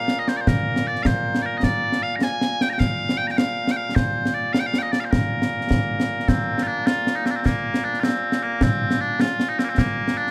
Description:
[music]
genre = scottish traditional, Scottish pipe music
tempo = 103 BPM (dotted quarters)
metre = 6/8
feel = straight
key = Bb major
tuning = A4 = 440 Hz
[part]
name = loud bright bagpipes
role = melody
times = 0.0-10.3 s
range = Bb2 to Bb5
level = -26 LUFS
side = equal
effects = none
[part]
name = concert snare drum and concert bass drum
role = drums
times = 0.1-10.3 s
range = none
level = -24 LUFS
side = equal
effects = none
[sound]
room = moderate recital hall reverb, RT60 1.4 s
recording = none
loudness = -22 LUFS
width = mono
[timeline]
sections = 0.0-6.3 A section; 6.3-10.3 A section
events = none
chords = none

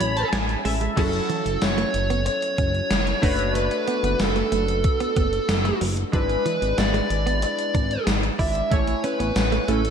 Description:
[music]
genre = 1980s-style pop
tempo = 93 BPM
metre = 4/4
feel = straight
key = B dorian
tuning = A4 = 440 Hz
[part]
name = fuzz lead guitar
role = melody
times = 0.0-9.9 s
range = A4 to E5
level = -25 LUFS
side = right 1 dB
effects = distortion, ping-pong delay, slapback echo
[part]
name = chorused retro synth keys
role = accompaniment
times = 0.0-9.9 s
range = F#3 to B5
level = -28 LUFS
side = left 1 dB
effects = slapback echo
[part]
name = direct-recorded clean electric guitar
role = riff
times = 0.0-9.8 s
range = E3 to E4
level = -31 LUFS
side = right 6 dB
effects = wide subtle chorus, ping-pong delay, slapback echo
[part]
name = chorused synth bass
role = bass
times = 0.0-9.9 s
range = F#1 to A1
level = -26 LUFS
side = equal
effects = none
[part]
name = gated 80s digital drum machine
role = drums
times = 0.0-9.9 s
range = crash cymbal, hi-hat, kick drum, snare drum, tambourine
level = -25 LUFS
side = equal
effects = gated reverb, gated reverb snare
[part]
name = analog synth brass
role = stabs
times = 9.7-9.8 s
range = A3 to E4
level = -24 LUFS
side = right 1 dB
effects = chorus
[sound]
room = light reverb, digital ambience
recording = none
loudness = -20 LUFS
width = side -7 dB against mid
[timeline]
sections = 1.0-9.9 A section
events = synth keys fill 0.0-1.0; band accent 8.7-9.9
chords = 0.0 Amaj7; 1.0 F#m7; 3.2 Bm7/F#; 6.1 E7/G#; 8.7 Amaj7

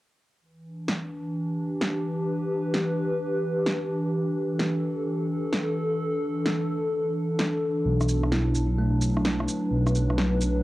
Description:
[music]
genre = future garage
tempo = 129 BPM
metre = 4/4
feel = swing 65% on 16ths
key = E minor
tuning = A4 = 439 Hz
[part]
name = warbly tape-like pad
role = sustained chords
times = 0.7-10.6 s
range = E3 to B4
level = -26 LUFS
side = equal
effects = chorus, built-in reverb, cassette tape
[part]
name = electronic snare drum, rim click and shaker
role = drums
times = 0.9-10.5 s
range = none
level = -28 LUFS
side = equal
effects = overdrive, small room ambience
[part]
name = dark detuned saw bass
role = bass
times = 7.9-10.6 s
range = B1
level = -24 LUFS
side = equal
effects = none
[part]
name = bell-like tine electric piano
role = accompaniment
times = 8.3-10.6 s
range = A3 to E4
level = -31 LUFS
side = right 2 dB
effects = cassette tape, tape echo
[sound]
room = light reverb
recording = home recording on cassette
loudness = -24 LUFS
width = side -17 dB against mid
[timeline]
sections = 0.4-10.6 A section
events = none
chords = 0.4 Em7; 7.9 Bm7

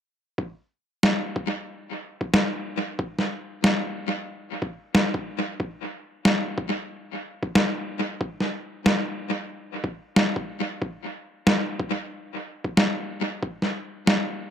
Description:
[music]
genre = glitch hop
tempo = 92 BPM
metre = 4/4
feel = swing 60% on 16ths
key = none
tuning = none
[part]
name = electronic kick drum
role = drums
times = 0.4-13.6 s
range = none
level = -29 LUFS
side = equal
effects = high-pass filter on kick, high-pass filter on room
[part]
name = electronic snare drum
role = drums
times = 1.0-14.2 s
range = none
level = -23 LUFS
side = equal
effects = dub echo
[sound]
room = wet spring reverb, RT60 1.8 s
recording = echo-heavy mix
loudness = -24 LUFS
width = side -9 dB against mid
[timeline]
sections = 0.4-14.5 A section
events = none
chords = none

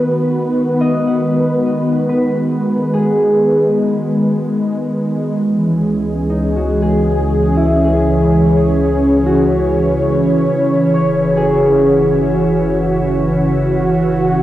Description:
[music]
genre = ambient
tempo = 71 BPM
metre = 3/4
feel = straight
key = C# minor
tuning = A4 = 440 Hz
[part]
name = warm analog pad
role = sustained chords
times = 0.0-14.4 s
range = D#3 to C#5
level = -14 LUFS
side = equal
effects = chorus, cassette tape
[part]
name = concert harp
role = arpeggios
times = 0.8-13.6 s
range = D#4 to F#5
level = -18 LUFS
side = left 1 dB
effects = cassette tape, analog delay
[part]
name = warm sub bass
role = bass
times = 5.5-14.4 s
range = F#1 to C#2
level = -22 LUFS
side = equal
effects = none
[part]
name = organ-like drone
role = drone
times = 6.5-14.4 s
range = C#3 to E3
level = -19 LUFS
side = right 1 dB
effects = ensemble chorus, built-in reverb, cassette tape
[sound]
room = wet spring reverb, RT60 2.4 s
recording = home recording on cassette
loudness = -12 LUFS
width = side -13 dB against mid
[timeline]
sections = 0.0-5.5 A section; 5.5-14.4 B section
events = none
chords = 0.4 G#m7; 5.5 C#m; 10.5 F#5

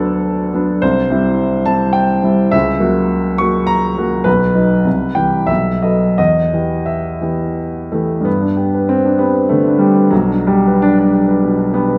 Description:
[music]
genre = classical, romantic character piece for solo piano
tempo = 81-107 BPM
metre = 3/4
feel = rubato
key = E minor, G major from 8.3 s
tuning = A4 = 440 Hz
[part]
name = warm baby grand piano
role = solo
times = 0.0-12.0 s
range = B1 to C#6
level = -15 LUFS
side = equal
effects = none
[sound]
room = wet recital hall reverb, RT60 1.6 s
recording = none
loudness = -15 LUFS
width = mono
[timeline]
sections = 0.0-8.3 A section; 8.3-12.0 B section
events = none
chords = 0.0 Bm/D; 0.8 C; 2.5 F#7/C#; 4.3 B; 4.9 C; 5.5 B7; 6.2 Em; 8.3 G; 10.1 G/B

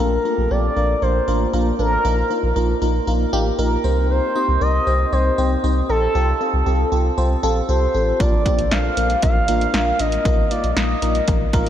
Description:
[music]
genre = synth-pop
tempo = 117 BPM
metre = 4/4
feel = straight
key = unclear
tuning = A4 = 440 Hz
[part]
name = expressive portamento lead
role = melody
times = 0.0-11.5 s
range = A4 to F5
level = -21 LUFS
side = equal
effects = chorus, tape echo
[part]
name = FM electric piano with soft pad layer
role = accompaniment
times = 0.0-11.7 s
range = Bb3 to Eb5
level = -22 LUFS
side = equal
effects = chorus, phaser
[part]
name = round analog bass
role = bass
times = 0.0-11.7 s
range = A1 to C2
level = -20 LUFS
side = equal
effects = none
[part]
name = punchy analog drum machine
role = drums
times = 8.2-11.7 s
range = hi-hat, kick drum, snare drum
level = -20 LUFS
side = equal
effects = none
[sound]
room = wet cathedral reverb, RT60 7.0 s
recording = dreamy mix soaked in reverb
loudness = -16 LUFS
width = side -10 dB against mid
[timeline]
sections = 0.0-11.7 A section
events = none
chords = 0.0 Bb; 2.0 Ebsus2/Bb; 3.8 Cm; 6.2 Fadd9/C; 8.2 Bb; 10.3 Ebsus2/Bb

